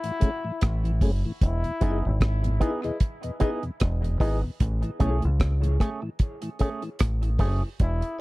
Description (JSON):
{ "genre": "dub reggae", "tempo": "75 BPM", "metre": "4/4", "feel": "swing 57% on 16ths", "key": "unclear", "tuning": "A4 = 440 Hz", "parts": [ { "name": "brilliant trombone", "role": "melody", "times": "0.0-2.2, 7.8-8.2 s", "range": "E4", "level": "-34 LUFS", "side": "left 3 dB", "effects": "dub echo" }, { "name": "mellow tonewheel organ", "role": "accompaniment", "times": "0.0-8.2 s", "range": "E2 to G#4", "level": "-32 LUFS", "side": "left 1 dB", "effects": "slow rotary speaker, high-pass filter" }, { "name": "deep reggae drum kit", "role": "drums", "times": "0.0-8.2 s", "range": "hi-hat, kick drum, rim click", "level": "-23 LUFS", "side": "equal", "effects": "none" }, { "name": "deep dub fingered electric bass", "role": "bass", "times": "0.6-8.0 s", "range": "E1 to C#2", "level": "-24 LUFS", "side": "equal", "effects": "tube saturation" }, { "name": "electric guitar with an envelope filter", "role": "accompaniment", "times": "1.8-7.6 s", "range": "A3 to G#4", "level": "-34 LUFS", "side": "right 4 dB", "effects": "high-pass filter, dub echo" }, { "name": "overdriven reed electric piano", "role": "stabs", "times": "1.8-5.2 s", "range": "E4 to D#5", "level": "-34 LUFS", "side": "left 3 dB", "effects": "fast tremolo, high-pass filter, dub echo" } ], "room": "little or no reverb", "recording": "dry, close 1970s-style studio recording", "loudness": "-23 LUFS", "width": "side -21 dB against mid", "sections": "0.0-8.2 A section", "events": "break 0.0-1.4; filter sweep 4.6-8.2", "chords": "0.0 Amaj7; 1.4 Emaj7; 4.6 Amaj7" }